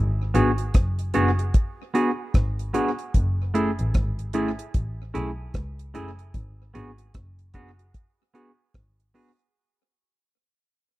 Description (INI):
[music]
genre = lovers rock reggae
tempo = 75 BPM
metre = 4/4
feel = swing 61% on 16ths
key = unclear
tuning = A4 = 436 Hz
[part]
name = dark double bass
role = bass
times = 0.0-9.1 s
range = F#1 to C#2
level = -26 LUFS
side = equal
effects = none
[part]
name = tine electric piano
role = accompaniment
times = 0.3-9.3 s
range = A3 to G#4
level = -25 LUFS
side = left 3 dB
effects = none
[part]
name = twangy electric guitar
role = stabs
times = 0.3-9.3 s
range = A3 to G#4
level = -28 LUFS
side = right 4 dB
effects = spring reverb
[part]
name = deep reggae drum kit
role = drums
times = 0.3-9.5 s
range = hi-hat, kick drum, rim click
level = -22 LUFS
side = equal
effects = none
[sound]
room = little or no reverb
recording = dry, close 1970s-style studio recording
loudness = -22 LUFS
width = side -17 dB against mid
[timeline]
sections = 0.0-9.5 A section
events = fade-out 0.0-9.5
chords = 0.0 G#m7b5; 3.1 F#m9; 6.3 G#m7b5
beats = 0.74 1.54 2.34 | 3.14 3.94 4.74 5.54 | 6.34 7.14 7.94 8.74